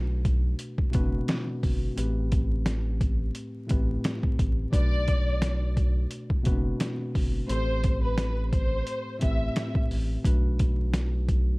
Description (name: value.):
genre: hip hop, boom-bap hip-hop.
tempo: 87 BPM.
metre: 4/4.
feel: swing 55% on 16ths.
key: B phrygian.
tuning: A4 = 439 Hz.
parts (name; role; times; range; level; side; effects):
tine electric piano; accompaniment; 0.0-11.6 s; A2 to B4; -32 LUFS; left 1 dB; cassette tape, high-pass filter, low-pass filter.
saturated sub bass; bass; 0.0-11.6 s; F#1 to B1; -28 LUFS; equal; none.
trip hop sampler-style drum kit; drums; 0.2-11.5 s; hi-hat, kick drum, snare drum; -26 LUFS; equal; overdrive.
warm studio violin section; melody; 4.7-9.7 s; B4 to E5; -32 LUFS; equal; high-pass filter, low-pass filter, digital delay.
finger snap; percussion; 5.4-11.1 s; none; -47 LUFS; right 4 dB; none.
room: little or no reverb.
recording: dark, warm production, vinyl crackle.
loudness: -24 LUFS.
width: side -25 dB against mid.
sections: 0.0-11.6 A section.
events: none.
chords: 0.0 Bm7; 2.0 Am7; 4.7 Bm7; 7.5 Am7; 10.2 Bm7.